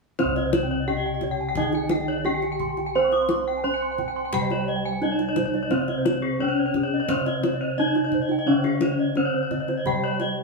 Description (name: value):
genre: Balinese gamelan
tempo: 87 BPM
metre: 4/4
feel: straight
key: C pelog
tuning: A4 = 441 Hz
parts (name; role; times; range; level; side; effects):
- gamelan-type bronze metallophone; melody; 0.2-10.4 s; C4 to C5; -26 LUFS; equal; none
- gamelan-type bronze metallophone; accompaniment; 0.2-10.4 s; C3 to C4; -31 LUFS; right 2 dB; none
- gamelan-type bronze metallophone; arpeggios; 0.2-10.3 s; Ab4-20c to Eb6-30c; -29 LUFS; left 2 dB; none
- gamelan-type bossed gongs; bass; 0.2-10.4 s; C2 to C5; -29 LUFS; equal; none
- kendang; percussion; 0.2-10.3 s; none; -29 LUFS; left 2 dB; none
- gamelan-type bronze metallophone; arpeggios; 0.3-10.2 s; Ab4-20c to Db6+20c; -32 LUFS; right 4 dB; none
room: moderate studio reverb, RT60 0.8 s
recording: band playing live in one room, studio ambience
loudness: -21 LUFS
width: side -2 dB against mid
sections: 0.2-10.4 A section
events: break 10.2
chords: none